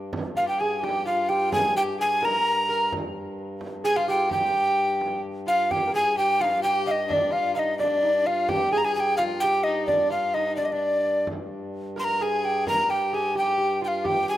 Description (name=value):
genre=medieval dance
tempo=86 BPM (dotted quarters)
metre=6/8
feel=straight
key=G phrygian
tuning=A4 = 440 Hz
part: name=pedal harmonium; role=drone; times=0.0-14.4 s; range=G2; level=-35 LUFS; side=left 1 dB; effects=none
part: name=frame drum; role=percussion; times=0.1-14.3 s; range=none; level=-36 LUFS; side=right 2 dB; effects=none
part: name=breathy alto recorder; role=melody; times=0.4-14.4 s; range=D5 to C6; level=-23 LUFS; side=equal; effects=none
part: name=clear fiddle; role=second line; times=0.4-14.4 s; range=D4 to Bb4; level=-32 LUFS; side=left 4 dB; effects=none
part: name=lute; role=second line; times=0.4-14.4 s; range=D4 to Bb4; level=-31 LUFS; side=right 2 dB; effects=none
room=moderate lush hall reverb, RT60 2.5 s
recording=rough home demo mix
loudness=-21 LUFS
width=side -13 dB against mid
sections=0.0-5.7 A section; 5.7-14.4 B section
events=none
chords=none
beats=| 0.13 0.83 | 1.52 2.22 | 2.92 3.61 | 4.31 5.01 | 5.70 6.40 | 7.10 7.79 | 8.49 9.19 | 9.88 10.58 | 11.28 11.97 | 12.67 13.37 | 14.06